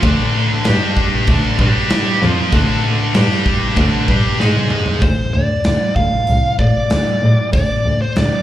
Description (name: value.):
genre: hard rock.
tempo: 96 BPM.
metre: 4/4.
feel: straight.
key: unclear.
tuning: A4 = 440 Hz.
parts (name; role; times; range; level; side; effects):
high-gain distorted guitar; riff; 0.0-5.0 s; D3 to G#4; -17 LUFS; equal; distortion.
warm double bass; bass; 0.0-8.2 s; C2 to A2; -17 LUFS; equal; none.
huge arena drum kit; drums; 0.0-8.3 s; crash cymbal, hi-hat, kick drum, snare drum, toms; -18 LUFS; equal; none.
smooth overdriven lead guitar; melody; 5.0-8.4 s; C5 to F5; -19 LUFS; equal; slapback echo.
room: small room ambience.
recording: live gig heard through the venue's PA, club reverb.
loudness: -13 LUFS.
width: side -12 dB against mid.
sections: 0.0-5.0 A section; 5.0-8.4 B section.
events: drum fill 4.4-5.0.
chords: 0.0 D5; 0.7 G5; 1.3 D5; 1.6 G5; 2.2 Dm; 3.1 G5; 3.8 D5; 4.4 G#5; 5.0 N.C..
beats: | 0.03 0.65 1.27 1.90 | 2.52 3.15 3.77 4.40 | 5.02 5.65 6.28 6.91 | 7.54 8.17.